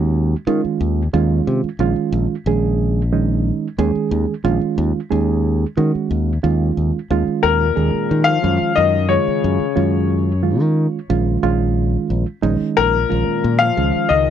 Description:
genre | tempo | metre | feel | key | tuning
jazz | 90 BPM | 4/4 | straight | Eb minor | A4 = 440 Hz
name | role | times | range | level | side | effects
reed electric piano | accompaniment | 0.0-14.3 s | Eb3 to Ab4 | -20 LUFS | right 7 dB | none
modern bright fingered electric bass | bass | 0.0-14.3 s | Bb1 to Eb3 | -18 LUFS | left 1 dB | none
bright baby grand piano | melody | 7.4-14.3 s | Bb4 to F5 | -18 LUFS | left 6 dB | tape echo
breathy trombone | second line | 7.4-14.3 s | Bb2 to F3 | -24 LUFS | left 17 dB | none
room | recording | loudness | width
little or no reverb | dry, close 1970s-style studio recording | -15 LUFS | side -9 dB against mid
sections
0.0-6.4 A section; 6.4-14.3 B section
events
none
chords
0.0 Ebm9; 11.4 Bbm7

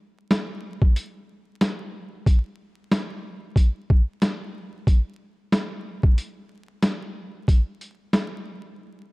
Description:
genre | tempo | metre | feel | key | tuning
hip hop | 92 BPM | 4/4 | swing 56% on 16ths | none | none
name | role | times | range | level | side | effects
boom bap sampler-style drum kit | drums | 0.3-8.3 s | hi-hat, kick drum, snare drum | -20 LUFS | equal | overdrive
room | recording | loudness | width
light reverb | dark, warm production, vinyl crackle | -21 LUFS | side -25 dB against mid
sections
0.0-9.1 A section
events
break 8.8-9.1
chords
none

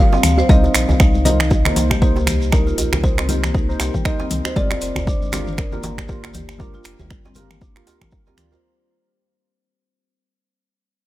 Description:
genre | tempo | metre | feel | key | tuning
afro house | 118 BPM | 4/4 | swing 57% on 16ths | unclear | A4 = 440 Hz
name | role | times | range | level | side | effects
kalimba | melody | 0.0-8.1 s | Bb4 to F5 | -26 LUFS | equal | tape echo
deep mellow chord stab | stabs | 0.0-8.6 s | Eb4 to D5 | -30 LUFS | right 3 dB | chorus, sidechain pumping
warm sub bass | bass | 0.0-8.6 s | F1 to D2 | -21 LUFS | equal | sidechain pumping
marimba with medium hard mallets | arpeggios | 0.1-8.6 s | G3 to C5 | -25 LUFS | left 2 dB | sidechain pumping
djembe | percussion | 0.1-8.6 s | none | -28 LUFS | right 2 dB | none
shekere | percussion | 0.1-8.6 s | none | -34 LUFS | right 2 dB | none
afro-pop drum kit | drums | 0.2-8.5 s | finger snaps, hi-hat, toms | -23 LUFS | right 1 dB | none
congas | percussion | 0.2-8.5 s | none | -26 LUFS | left 4 dB | none
electronic kick drum | drums | 0.5-8.2 s | none | -16 LUFS | equal | overdrive
room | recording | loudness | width
small room ambience | none | -15 LUFS | side -16 dB against mid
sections
0.0-8.6 A section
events
drop 0.0-8.6; fade-out 0.5-8.6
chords
0.5 Cm7; 4.6 Gm7

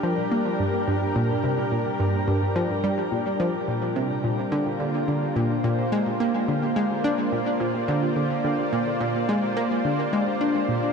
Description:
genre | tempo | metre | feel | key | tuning
ambient, sequencer-driven space music | 107 BPM | 4/4 | straight | unclear | A4 = 440 Hz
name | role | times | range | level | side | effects
lush unison pad | sustained chords | 0.0-10.9 s | G3 to D5 | -26 LUFS | equal | chorus
concert harp | arpeggios | 0.0-10.9 s | D4 to G5 | -37 LUFS | right 2 dB | none
analog pluck | riff | 0.0-10.8 s | G2 to D4 | -24 LUFS | equal | chorus, tape echo
room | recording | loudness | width
wet shimmer reverb, RT60 7.5 s | dark, warm production | -22 LUFS | side -5 dB against mid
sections
0.0-10.9 A section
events
none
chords
0.0 Gm; 4.5 Bb

